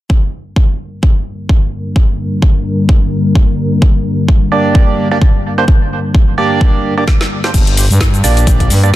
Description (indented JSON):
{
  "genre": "bass house",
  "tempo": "129 BPM",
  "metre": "4/4",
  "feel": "swing 57% on 16ths",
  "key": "G minor",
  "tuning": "A4 = 440 Hz",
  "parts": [
    { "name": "dark analog pad", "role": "sustained chords", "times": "0.1-7.5 s", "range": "G3 to Bb4", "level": "-17 LUFS", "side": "left 2 dB", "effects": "chorus, sidechain pumping" },
    { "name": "electronic kick drum", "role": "drums", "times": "0.1-9.0 s", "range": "none", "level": "-10 LUFS", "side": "equal", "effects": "none" },
    { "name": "percussive organ stab", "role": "stabs", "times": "4.5-8.9 s", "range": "Bb3 to D5", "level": "-15 LUFS", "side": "right 4 dB", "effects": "lush chorus, cassette tape, sidechain pumping, tape echo" },
    { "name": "garage drum kit", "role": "drums", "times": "7.1-9.0 s", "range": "crash cymbal, hi-hat, shaker, snare drum", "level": "-17 LUFS", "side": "left 1 dB", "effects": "none" },
    { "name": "growling FM bass", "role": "bass", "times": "7.5-9.0 s", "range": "G1 to G2", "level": "-11 LUFS", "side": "equal", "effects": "tube saturation, sidechain pumping" }
  ],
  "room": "light reverb",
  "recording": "dense, heavily limited modern master",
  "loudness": "-10 LUFS",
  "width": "side -15 dB against mid",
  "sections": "0.1-7.5 A section; 7.5-9.0 B section",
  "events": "drum fill 7.1-7.5; filter sweep on FM bass 7.5-9.0",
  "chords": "0.1 Gm"
}